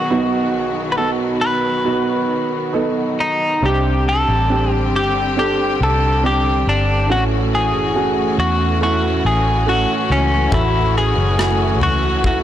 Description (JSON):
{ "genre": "pop ballad", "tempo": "70 BPM", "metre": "4/4", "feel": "straight", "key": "unclear", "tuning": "A4 = 440 Hz", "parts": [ { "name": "twelve-string electric guitar", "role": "melody", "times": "0.0-12.4 s", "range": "C#4 to B4", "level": "-19 LUFS", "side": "left 2 dB", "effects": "ping-pong delay" }, { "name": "warm baby grand piano", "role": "accompaniment", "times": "0.0-12.4 s", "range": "B1 to A4", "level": "-21 LUFS", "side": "right 5 dB", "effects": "none" }, { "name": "rich studio string section", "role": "sustained chords", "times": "0.0-12.4 s", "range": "D3 to G4", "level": "-24 LUFS", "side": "left 3 dB", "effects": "none" }, { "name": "vintage muted fingered electric bass", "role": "bass", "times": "3.6-12.4 s", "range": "F#1 to E2", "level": "-19 LUFS", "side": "left 1 dB", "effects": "none" }, { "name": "modern studio drum kit", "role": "drums", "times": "10.5-12.4 s", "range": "kick drum, rim click, toms", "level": "-22 LUFS", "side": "left 1 dB", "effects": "none" } ], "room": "light reverb, small room ambience", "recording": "blown-out, overdriven recording, overdrive", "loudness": "-15 LUFS", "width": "side -11 dB against mid", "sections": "0.0-3.6 A section; 3.6-12.4 B section", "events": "none", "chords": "0.0 B; 3.6 Csus2; 7.1 A6", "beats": "| 0.11 0.98 1.85 2.74 | 3.63 4.50 5.37 6.24 | 7.10 7.96 8.81 9.67 | 10.52 11.38 12.24" }